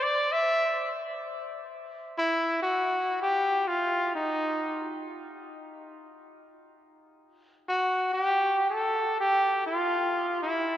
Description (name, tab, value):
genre	jazz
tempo	131 BPM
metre	3/4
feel	swing 67% on 8ths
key	unclear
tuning	A4 = 440 Hz
part	clear trumpet	solo	0.0-4.9, 7.7-10.8 s	Eb4 to E5	-26 LUFS	equal	none
room	wet cathedral reverb, RT60 5.8 s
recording	in a vast, echoing space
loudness	-25 LUFS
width	side -12 dB against mid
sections	0.0-2.3 A section; 2.3-10.8 B section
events	trumpet solo 0.0-2.3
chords	none